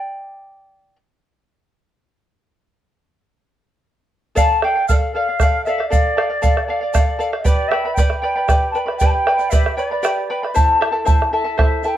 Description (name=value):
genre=andean folk, Andean ensemble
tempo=78 BPM (dotted quarters)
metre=6/8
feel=straight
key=unclear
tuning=A4 = 440 Hz
part: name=charango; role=accompaniment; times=0.0-1.0, 4.4-12.0 s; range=E4 to B5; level=-20 LUFS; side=left 1 dB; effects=none
part: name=mellow quena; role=melody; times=4.4-12.0 s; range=D5 to A5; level=-20 LUFS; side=equal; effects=none
part: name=bombo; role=percussion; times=4.4-11.7 s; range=none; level=-17 LUFS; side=right 1 dB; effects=none
part: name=egg shaker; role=percussion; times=4.4-11.9 s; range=none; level=-35 LUFS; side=right 7 dB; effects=none
room=moderate studio reverb, RT60 0.6 s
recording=worn, warbling old tape, cassette tape, warbly pitch drift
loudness=-15 LUFS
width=side -12 dB against mid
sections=0.0-4.4 A section; 4.4-12.0 B section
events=charango solo 0.0-4.4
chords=0.0 D5; 1.3 N.C.; 4.4 Dm; 7.5 G; 10.6 Am